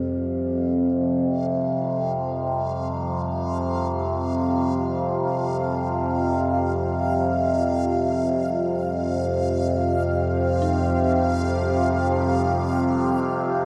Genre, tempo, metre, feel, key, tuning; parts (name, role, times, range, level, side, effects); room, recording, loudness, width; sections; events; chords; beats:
dark ambient drone; free time; A4 = 440 Hz
deep dark ambient pad; sustained chords; 0.0-13.7 s; C4 to F5; -29 LUFS; equal; chorus, built-in reverb
dark detuned synth bell; arpeggios; 0.0-13.7 s; Eb4 to Bb4; -40 LUFS; equal
overtone-sweeping drone; drone; 0.0-13.7 s; F2 to C3; -25 LUFS; equal; chorus, built-in reverb
backwards swelling texture; texture; 0.5-13.7 s; F5; -39 LUFS; equal; built-in reverb, shimmer reverb
wet huge ambient reverb, RT60 8.5 s; worn, warbling old tape, cassette tape, warbly pitch drift; -23 LUFS; mono
0.0-13.7 A section
fade-in on synth texture 0.0-13.7
0.0 Fsus2
free time